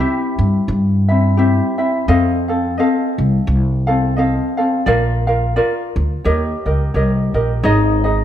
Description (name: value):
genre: Hawaiian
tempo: 86 BPM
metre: 4/4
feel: swing 58% on 8ths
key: unclear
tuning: A4 = 440 Hz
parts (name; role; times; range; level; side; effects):
- ukulele; accompaniment; 0.0-8.2 s; C4 to F5; -17 LUFS; left 1 dB; none
- upright bass; bass; 0.4-8.2 s; Ab1 to G2; -16 LUFS; equal; none
room: moderate recital hall reverb, RT60 1.3 s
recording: dark, warm production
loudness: -14 LUFS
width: side -10 dB against mid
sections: 0.0-7.6 A section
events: none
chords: 0.0 C; 2.1 F7; 4.9 Bb; 6.3 Eb7; 7.6 Absus4